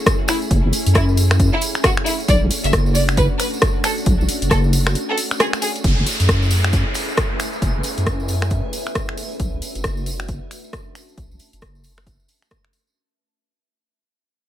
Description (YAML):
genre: UK garage, two-step garage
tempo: 135 BPM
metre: 4/4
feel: swing 61% on 16ths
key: unclear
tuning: A4 = 439 Hz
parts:
  - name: soft string machine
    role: sustained chords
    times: 0.0-12.9 s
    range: A3 to G#4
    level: -28 LUFS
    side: equal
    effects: ensemble chorus, vintage 12-bit sampler grit, sidechain pumping
  - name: electronic kick drum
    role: drums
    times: 0.1-12.6 s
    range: none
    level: -21 LUFS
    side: equal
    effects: studio reverb
  - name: house drum kit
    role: drums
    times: 0.1-12.8 s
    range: finger snaps, hi-hat, rim click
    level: -22 LUFS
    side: equal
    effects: studio reverb
  - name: tambourine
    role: percussion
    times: 0.1-12.9 s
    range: none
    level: -30 LUFS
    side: right 3 dB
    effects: none
  - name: rich studio violin section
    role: melody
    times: 0.3-5.7 s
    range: E4 to E5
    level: -24 LUFS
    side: equal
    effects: tape echo
  - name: deep soft wobble bass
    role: bass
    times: 0.5-12.2 s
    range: F#1 to F#2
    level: -18 LUFS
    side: equal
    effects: chorus
  - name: downlifter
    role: sound effects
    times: 5.8-9.4 s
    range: none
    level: -28 LUFS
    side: equal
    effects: none
  - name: granular cloud pad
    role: texture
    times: 6.7-13.0 s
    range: B4 to A5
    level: -36 LUFS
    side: right 1 dB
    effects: built-in reverb, sidechain pumping
room: little or no reverb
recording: none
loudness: -16 LUFS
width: side -12 dB against mid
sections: 0.0-5.8 A section; 5.8-13.0 B section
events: drop 0.0-5.8; break 5.0-5.8; fade-out on ambient pad 5.8-13.0; fade-out 5.8-13.0; filter sweep on string machine 5.8-13.0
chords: 0.0 F#m9; 2.1 Bm9 (rootless); 5.8 F#m9; 9.2 Bm9